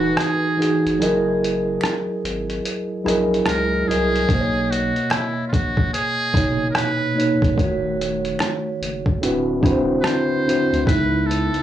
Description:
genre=lo-fi hip hop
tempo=73 BPM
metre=4/4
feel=swing 63% on 16ths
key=unclear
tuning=A4 = 440 Hz
part: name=trumpet with metal mute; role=melody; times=0.0-11.6 s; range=E4 to C5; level=-25 LUFS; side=right 1 dB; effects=analog delay
part: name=mellow tine electric piano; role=accompaniment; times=0.0-11.6 s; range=A#2 to D#5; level=-20 LUFS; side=right 1 dB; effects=medium stereo tremolo, cassette tape
part: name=saturated sub bass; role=bass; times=0.0-11.5 s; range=D1 to D2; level=-29 LUFS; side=equal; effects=none
part: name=lo-fi sampler-style drum kit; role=drums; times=0.2-11.6 s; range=hi-hat, kick drum, rim click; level=-23 LUFS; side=equal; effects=none
part: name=finger snap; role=percussion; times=0.2-10.3 s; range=none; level=-34 LUFS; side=left 1 dB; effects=none
room=moderate small room reverb, RT60 0.5 s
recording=dry, gritty hardware recording, small room ambience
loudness=-18 LUFS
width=side -11 dB against mid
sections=0.0-11.6 A section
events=break 0.0-4.3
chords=0.0 Emaj9; 1.0 F#13; 4.3 Bmaj9; 7.6 D#m7b5; 9.2 D13; 10.9 C#m9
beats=0.18 | 1.00 1.82 2.64 3.47 | 4.29 5.11 5.93 6.75 | 7.58 8.40 9.22 10.04 | 10.86

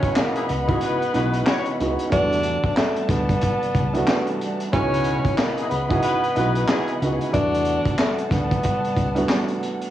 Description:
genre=hip hop, boom-bap hip-hop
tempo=92 BPM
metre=4/4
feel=swing 60% on 16ths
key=unclear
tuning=A4 = 440 Hz
part: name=breathy tenor saxophone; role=melody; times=0.0-9.5 s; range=A3 to D4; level=-25 LUFS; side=equal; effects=high-pass filter, low-pass filter, cassette tape, tape echo
part: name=dark upright piano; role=accompaniment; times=0.0-9.9 s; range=C#2 to F#4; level=-26 LUFS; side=right 3 dB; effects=cassette tape, high-pass filter, low-pass filter
part: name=warm studio string section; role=sustained chords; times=0.0-9.9 s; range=E3 to B5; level=-30 LUFS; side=left 2 dB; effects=high-pass filter, low-pass filter, cassette tape
part: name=mellow horn section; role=stabs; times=0.0-6.9 s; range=E3 to C#5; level=-30 LUFS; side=left 3 dB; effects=high-pass filter, low-pass filter, cassette tape, tape echo
part: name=crunchy breakbeat drum kit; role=drums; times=0.0-9.9 s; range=handclaps, hi-hat, kick drum, snare drum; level=-24 LUFS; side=equal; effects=cassette tape
part: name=fat analog bass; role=bass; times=0.5-9.3 s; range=B1 to E2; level=-25 LUFS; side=left 1 dB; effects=none
room=light reverb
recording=home recording on cassette, small room ambience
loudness=-19 LUFS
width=side -12 dB against mid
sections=0.0-9.9 A section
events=none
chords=0.0 C#m11; 2.1 Em11; 4.7 C#m11; 7.3 Em11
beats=0.17 0.82 1.47 | 2.12 2.77 3.43 4.08 | 4.73 5.38 6.04 6.69 | 7.34 7.99 8.64 9.30

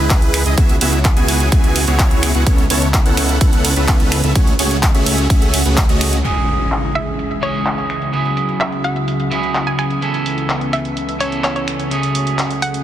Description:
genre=EDM, festival progressive house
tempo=127 BPM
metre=4/4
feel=straight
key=C# minor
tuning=A4 = 440 Hz
part: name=lush unison pad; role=sustained chords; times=0.0-12.8 s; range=C#2 to B4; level=-23 LUFS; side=left 1 dB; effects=chorus, sidechain pumping
part: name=dense compressed supersaw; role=riff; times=0.0-6.2 s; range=A3 to G#5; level=-19 LUFS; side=right 1 dB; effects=sidechain pumping, low-pass filter, digital delay
part: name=wide detuned saw bass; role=bass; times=0.0-6.2 s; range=C#2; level=-18 LUFS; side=equal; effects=chorus, sidechain pumping
part: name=big-room dance drum kit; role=drums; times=0.1-12.8 s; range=crash cymbal, finger snaps, handclaps, hi-hat, ride cymbal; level=-22 LUFS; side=right 1 dB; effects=low-pass filter on hats, low-pass filter on cymbals, low-pass filter on snare, low-pass filter on room
part: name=electronic kick drum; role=drums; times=0.1-5.9 s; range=none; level=-14 LUFS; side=equal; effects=none
part: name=electric guitar at the edge of break-up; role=accompaniment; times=6.2-12.8 s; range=C#3 to A4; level=-22 LUFS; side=right 4 dB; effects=sidechain pumping, digital delay
part: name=impact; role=sound effects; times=6.2-8.1 s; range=none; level=-24 LUFS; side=equal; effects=none
part: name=hollow square pluck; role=melody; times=7.0-12.8 s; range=C#5 to G#5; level=-24 LUFS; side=equal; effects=chorus, digital delay
room=light reverb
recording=dense, heavily limited modern master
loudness=-14 LUFS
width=side -11 dB against mid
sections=0.0-6.2 A section; 6.2-12.8 B section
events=drop 0.0-6.2; impact 6.2-8.1; filter sweep on drum 6.2-12.8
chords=0.0 C#m; 0.6 Eadd9/C#; 2.5 Aadd9/C#; 4.4 F#madd9/C#; 6.2 C#m; 8.1 Eadd9/C#; 10.0 Aadd9/C#; 11.9 F#madd9/C#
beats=0.10 | 0.57 1.05 1.52 1.99 | 2.46 2.94 3.41 3.88 | 4.36 4.83 5.30 5.77 | 6.24 6.72 7.19 7.66 | 8.13 8.61 9.08 9.55 | 10.02 10.50 10.97 11.44 | 11.91 12.39

